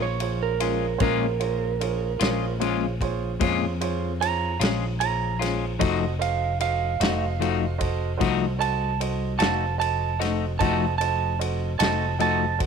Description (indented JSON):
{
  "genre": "slow blues",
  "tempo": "50 BPM (dotted quarters)",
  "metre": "12/8",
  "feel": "straight",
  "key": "Bb minor",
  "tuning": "A4 = 440 Hz",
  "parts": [
    { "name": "electric slide guitar", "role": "second line", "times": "0.0-12.6 s", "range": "Bb4 to Bb5", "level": "-27 LUFS", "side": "right 12 dB", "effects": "none" },
    { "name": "clean electric guitar", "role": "accompaniment", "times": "0.0-12.4 s", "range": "Bb2 to Gb4", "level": "-27 LUFS", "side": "left 13 dB", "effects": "harmonic tremolo" },
    { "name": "warm upright piano", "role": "accompaniment", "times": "0.0-12.7 s", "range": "F4 to F5", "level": "-31 LUFS", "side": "right 13 dB", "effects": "none" },
    { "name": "mellow fretless electric bass", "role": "bass", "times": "0.0-12.7 s", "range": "F1 to F2", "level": "-28 LUFS", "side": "left 1 dB", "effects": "tube saturation, ensemble chorus" },
    { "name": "natural country drum kit", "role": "drums", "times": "0.2-12.7 s", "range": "kick drum, ride cymbal, snare drum", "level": "-30 LUFS", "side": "left 2 dB", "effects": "none" }
  ],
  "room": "light reverb",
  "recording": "1960s-style stereo with parts hard left and right",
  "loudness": "-22 LUFS",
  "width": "side -6 dB against mid",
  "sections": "0.0-12.7 A section",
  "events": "electric slide guitar solo 0.0-12.7",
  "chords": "0.0 Bbm7; 5.8 F7b9"
}